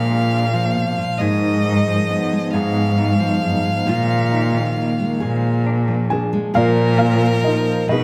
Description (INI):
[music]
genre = acoustic folk-pop ballad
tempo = 45 BPM (dotted quarters)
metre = 6/8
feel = straight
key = unclear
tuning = A4 = 440 Hz
[part]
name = bright violin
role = second line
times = 0.0-8.0 s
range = Bb4 to F5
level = -25 LUFS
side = equal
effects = none
[part]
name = nylon-string guitar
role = accompaniment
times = 0.0-8.0 s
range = Gb2 to Ab4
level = -25 LUFS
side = equal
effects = none
[part]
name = electric guitar through a small old amp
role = arpeggios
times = 0.0-8.0 s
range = Eb3 to Ab4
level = -29 LUFS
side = equal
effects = tremolo
[part]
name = warm cello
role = bass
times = 0.0-8.0 s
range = Ab2 to Cb3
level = -22 LUFS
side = equal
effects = none
[part]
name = dark upright piano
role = melody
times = 6.1-8.0 s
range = Eb4 to Ab5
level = -23 LUFS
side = equal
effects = none
[part]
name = warm chamber string section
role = sustained chords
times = 6.6-8.0 s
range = F3 to F4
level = -35 LUFS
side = equal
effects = none
[sound]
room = moderate recital hall reverb, RT60 1.4 s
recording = none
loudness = -18 LUFS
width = mono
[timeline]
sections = 0.0-6.6 A section; 6.6-8.0 B section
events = violin solo 0.0-6.6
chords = 0.0 Bb7; 1.2 Fm7b5/Ab; 3.9 Bb7sus4; 5.2 Bb7; 6.6 Bb